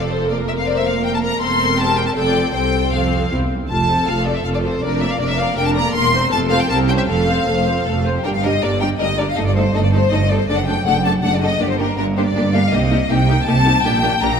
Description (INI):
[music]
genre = quick classical-period movement for string orchestra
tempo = 160 BPM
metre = 3/4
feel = straight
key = F major, G minor from 8.2 s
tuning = A4 = 440 Hz
[part]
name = clear studio violin section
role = melody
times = 0.0-14.3 s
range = G4 to C6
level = -22 LUFS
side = left 2 dB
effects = none
[part]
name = rich studio violin section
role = second line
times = 0.0-14.4 s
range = F4 to Bb5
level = -22 LUFS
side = left 4 dB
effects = none
[part]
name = rich studio viola section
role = accompaniment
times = 0.0-14.3 s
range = G3 to D5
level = -21 LUFS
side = equal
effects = none
[part]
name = clear studio cello section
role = bass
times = 0.0-14.4 s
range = C2 to C3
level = -23 LUFS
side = right 2 dB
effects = none
[part]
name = clear studio double bass section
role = bass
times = 0.0-14.4 s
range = E1 to C2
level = -21 LUFS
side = right 2 dB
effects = none
[sound]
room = wet concert hall reverb, RT60 2.6 s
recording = none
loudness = -15 LUFS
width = side -6 dB against mid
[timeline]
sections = 0.0-8.2 A section; 8.2-14.4 B section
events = none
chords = 0.3 Bb5/F; 1.4 C7/E; 2.2 F; 2.5 F/C; 3.3 C; 3.7 F; 4.8 Bb/F; 5.9 C7/E; 6.3 F; 6.7 C5; 7.1 F; 8.2 Gm; 9.4 Cm69/G; 10.5 D/F#; 11.6 Gm; 12.7 Cm7; 13.8 Gm/Bb